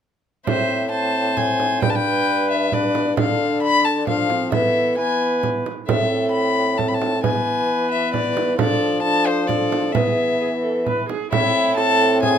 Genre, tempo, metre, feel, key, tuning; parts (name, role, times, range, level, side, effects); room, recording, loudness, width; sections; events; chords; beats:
classical, renaissance-style consort dance; 133 BPM; 3/4; straight; A harmonic minor; A4 = 442 Hz
rich violin; melody; 0.5-12.4 s; C5 to B5; -21 LUFS; left 4 dB
rich viola; second line; 0.5-12.4 s; E4 to C5; -25 LUFS; right 4 dB
warm trombone; accompaniment; 0.5-12.4 s; B3 to D4; -25 LUFS; left 2 dB
mellow bassoon; bass; 0.5-12.4 s; G2 to F3; -23 LUFS; equal
frame drum; percussion; 0.5-12.4 s; -24 LUFS; right 5 dB
light reverb; close, detailed microphones; -17 LUFS; side -8 dB against mid
0.5-11.3 A section; 11.3-12.4 A section
0.5 Am; 1.8 G; 3.2 Dm; 4.5 Esus4; 5.9 Am; 7.2 E; 8.6 Dm/F; 9.9 E; 11.3 Am
| 0.47 0.93 1.38 | 1.83 2.28 2.73 | 3.17 3.62 4.07 | 4.53 4.98 5.43 | 5.89 6.34 6.79 | 7.24 7.69 8.14 | 8.59 9.04 9.49 | 9.95 10.41 10.86 | 11.32 11.77 12.22